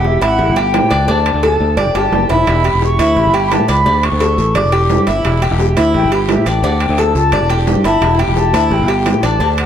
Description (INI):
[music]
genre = latin, Cuban son and guajira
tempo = 173 BPM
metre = 4/4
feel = straight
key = D major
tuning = A4 = 440 Hz
[part]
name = silver concert flute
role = melody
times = 0.0-9.7 s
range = B4 to D6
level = -18 LUFS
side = left 2 dB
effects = none
[part]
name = Cuban tres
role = arpeggios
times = 0.0-9.7 s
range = D4 to D5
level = -16 LUFS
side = right 1 dB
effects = none
[part]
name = fingered electric bass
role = bass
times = 0.0-9.6 s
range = E1 to A2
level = -15 LUFS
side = equal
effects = none
[part]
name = bongos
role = percussion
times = 0.0-9.7 s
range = none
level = -23 LUFS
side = left 5 dB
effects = none
[part]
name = timbales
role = percussion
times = 0.0-9.7 s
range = none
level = -23 LUFS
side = right 6 dB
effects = none
[part]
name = guiro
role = percussion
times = 2.5-9.7 s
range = none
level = -32 LUFS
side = left 6 dB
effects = none
[sound]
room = moderate plate reverb, RT60 2.5 s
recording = heard from further back in the room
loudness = -11 LUFS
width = side -9 dB against mid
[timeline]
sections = 0.0-9.7 A section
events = flute solo 0.0-9.7; drum fill 2.0-2.5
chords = 0.4 A7; 1.1 D5; 1.8 Gsus2; 2.5 Em7; 3.2 A7; 3.9 D5; 4.6 Em7; 5.9 A5; 6.6 D5; 7.3 Em7; 8.7 A5